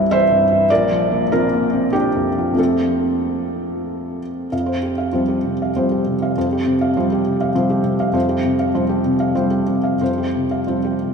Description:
neoclassical minimalist piano; 90-101 BPM; 3/4; rubato; F major; A4 = 440 Hz
felt-muted upright piano; solo; 0.0-11.1 s; Bb1 to F5; -16 LUFS; equal; slapback echo
wet cathedral reverb, RT60 5.5 s; in a vast, echoing space; -16 LUFS; side -6 dB against mid
0.0-4.5 A section; 4.5-11.1 B section
0.0 C; 0.7 Bbadd9; 2.6 F; 4.5 Fsus2

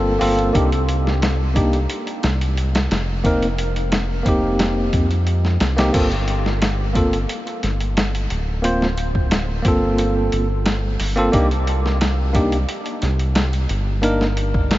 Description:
trip hop; 89 BPM; 4/4; straight; G minor; A4 = 441 Hz
bell-like tine electric piano; accompaniment; 0.0-14.3 s; Bb3 to C5; -21 LUFS; equal; harmonic tremolo, tape echo
round analog bass; bass; 0.0-14.8 s; D1 to F2; -20 LUFS; equal; tube saturation
dusty soul sampler-style drum kit; drums; 0.2-14.8 s; crash cymbal, hi-hat, kick drum, snare drum; -22 LUFS; equal; studio reverb
moderate huge ambient reverb, RT60 6.1 s; dreamy mix soaked in reverb, vinyl crackle, nothing above 7.7 kHz; -17 LUFS; side -16 dB against mid
0.0-5.9 A section; 5.9-14.8 B section
0.0 Gm11; 0.5 Cm7; 3.2 F9sus4; 5.9 Gm11; 11.3 Cm7

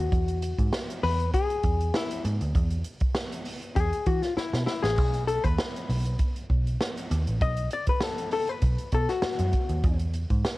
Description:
funk; 99 BPM; 4/4; straight; B mixolydian; A4 = 441 Hz
hollow-body jazz guitar; accompaniment; 0.0-10.0 s; E4 to D#5; -29 LUFS; left 4 dB; cassette tape
vintage muted picked electric bass; bass; 0.0-10.4 s; A1 to E3; -27 LUFS; equal
swinging big-band drum kit; drums; 0.1-10.6 s; hi-hat, kick drum, snare drum, splash cymbal; -28 LUFS; right 1 dB
studio reverb; home recording on cassette; -24 LUFS; side -19 dB against mid
0.0-10.6 A section
hollow-body jazz guitar solo 0.0-10.6; drum fill 4.4-5.0
0.1 Eadd9; 5.0 B7; 9.8 E

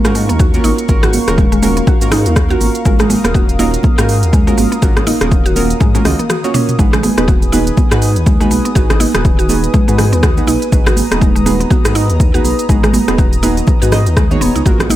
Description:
afro house; 122 BPM; 4/4; swing 58% on 16ths; G# dorian; A4 = 440 Hz
warm analog pad; sustained chords; 0.0-15.0 s; A#4 to D#6; -24 LUFS; equal; chorus, sidechain pumping
mallet-like synth pluck; arpeggios; 0.0-15.0 s; D#3 to F#4; -18 LUFS; equal; chorus, sidechain pumping, digital delay
dark detuned saw bass; bass; 0.0-15.0 s; D#1 to G#2; -17 LUFS; equal; sidechain pumping
afro-pop drum kit; drums; 0.0-15.0 s; hi-hat, rim click, shaker, toms; -20 LUFS; equal
deep mellow chord stab; stabs; 0.1-15.0 s; A#3 to D#5; -20 LUFS; right 2 dB; chorus, sidechain pumping, digital delay
electronic kick drum; drums; 0.4-14.8 s; -13 LUFS; equal; overdrive
congas; percussion; 0.5-15.0 s; -20 LUFS; right 5 dB
little or no reverb; -10 LUFS; side -14 dB against mid
0.0-15.0 A section
drum fill 5.8-6.8; break 6.3-6.8
0.0 F#maj7; 6.8 G#m7

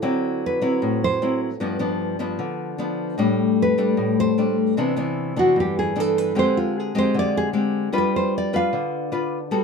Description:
bossa nova; 152 BPM; 4/4; straight; A4 = 441 Hz
nylon-string guitar; accompaniment; 0.0-9.6 s; G2 to B4; -21 LUFS; left 2 dB
nylon-string guitar; melody; 0.5-9.4 s; F4 to F5; -22 LUFS; right 2 dB
moderate studio ambience, RT60 0.5 s; minimal, uncompressed stereo recording; -19 LUFS; side -5 dB against mid
0.0-9.5 A section
nylon-string guitar solo 0.0-9.5
0.0 D9; 1.6 G7; 3.2 Am11; 4.8 Cmaj9; 6.4 Fm69/D (rootless); 7.9 G7

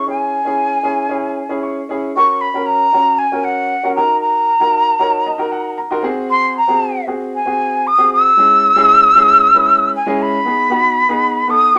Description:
soul; 116 BPM; 4/4; straight; A4 = 439 Hz
jazz flute; melody; 0.0-11.8 s; F#5 to E6; -14 LUFS; equal
warm upright piano; accompaniment; 0.1-11.8 s; G#3 to C#6; -23 LUFS; equal
moderate studio reverb, RT60 0.5 s; tape saturation; -14 LUFS; mono
0.0-2.2 A section; 2.2-10.5 B section; 10.5-11.8 C section
upright piano fill 1.4-2.2, 4.7-6.3
0.0 C#m; 2.2 F#; 4.0 D#m; 6.0 G#7; 8.4 C#m/G#; 10.5 G#m

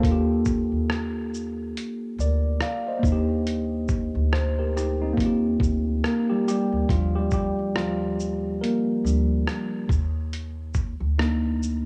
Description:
lo-fi hip hop; 70 BPM; 4/4; swing 58% on 16ths; Eb major; A4 = 441 Hz
tine electric piano; accompaniment; 0.0-11.9 s; F3 to F5; -27 LUFS; equal; overdrive, low-pass filter
upright bass; bass; 0.0-11.9 s; D2 to Eb2; -29 LUFS; equal
lo-fi sampler-style drum kit; drums; 0.0-11.9 s; hi-hat, kick drum, rim click, shaker; -30 LUFS; equal; vintage 12-bit sampler grit
moderate spring reverb, RT60 2.5 s; small room ambience; -25 LUFS; mono
0.0-6.9 A section; 6.9-11.9 A section
tine electric piano solo 6.9-11.9
0.0 Ebmaj9; 3.0 Cm9; 5.2 Eb69; 6.9 Ebmaj9; 9.9 Bbadd11

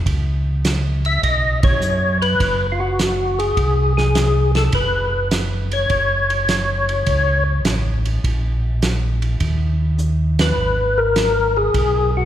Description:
soul jazz organ trio; 103 BPM; 4/4; swing 69% on 8ths; A4 = 440 Hz
mellow tonewheel organ; bass; 0.1-12.3 s; F#1 to F#2; -19 LUFS; equal; chorus vibrato, slow rotary speaker
warm soul drum kit; drums; 0.1-11.9 s; hi-hat, kick drum, ride cymbal, snare drum; -23 LUFS; right 2 dB
percussive tonewheel organ; melody; 1.1-12.3 s; E#4 to E5; -18 LUFS; left 2 dB; slow rotary speaker, chorus vibrato
wet concert hall reverb, RT60 2.2 s; recorded in a church or concert hall; -16 LUFS; side -11 dB against mid
0.0-12.3 A section
band accent 1.5, 10.3; drum fill 10.0-10.6
0.0 N.C.; 1.2 Bsus2; 3.6 F#(b5, no3); 5.9 F#5; 8.2 N.C.; 9.4 B/D#; 10.6 G#m

